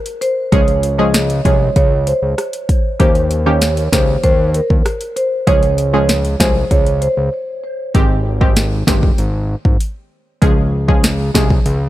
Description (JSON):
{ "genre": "dancehall", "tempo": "97 BPM", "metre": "4/4", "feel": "straight", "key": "Ab major", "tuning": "A4 = 440 Hz", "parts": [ { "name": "afro-pop drum kit", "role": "drums", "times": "0.1-11.8 s", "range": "hi-hat, kick drum, rim click, snare drum", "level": "-15 LUFS", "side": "equal", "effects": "none" }, { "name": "marimba with medium mallets", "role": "melody", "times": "0.2-7.1 s", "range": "Bb4 to Eb5", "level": "-18 LUFS", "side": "right 1 dB", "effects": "tape echo" }, { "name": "glassy wavetable pluck", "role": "accompaniment", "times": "0.5-11.6 s", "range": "Eb3 to Ab4", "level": "-19 LUFS", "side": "equal", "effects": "chorus, sidechain pumping" }, { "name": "fat analog bass", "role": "bass", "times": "0.5-11.9 s", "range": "G1 to Eb2", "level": "-17 LUFS", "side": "equal", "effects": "none" } ], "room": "little or no reverb", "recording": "dry, gritty hardware recording", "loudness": "-12 LUFS", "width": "side -15 dB against mid", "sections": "0.0-7.9 A section; 7.9-11.9 B section", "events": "break 7.3-7.9", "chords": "0.0 N.C.; 0.5 Db; 3.0 Eb7; 5.5 Db; 7.9 Abmaj7; 10.4 Db", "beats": "| 0.52 1.14 1.76 2.38 | 3.00 3.62 4.24 4.85 | 5.47 6.09 6.71 7.33 | 7.95 8.56 9.18 9.80 | 10.42 11.04 11.66" }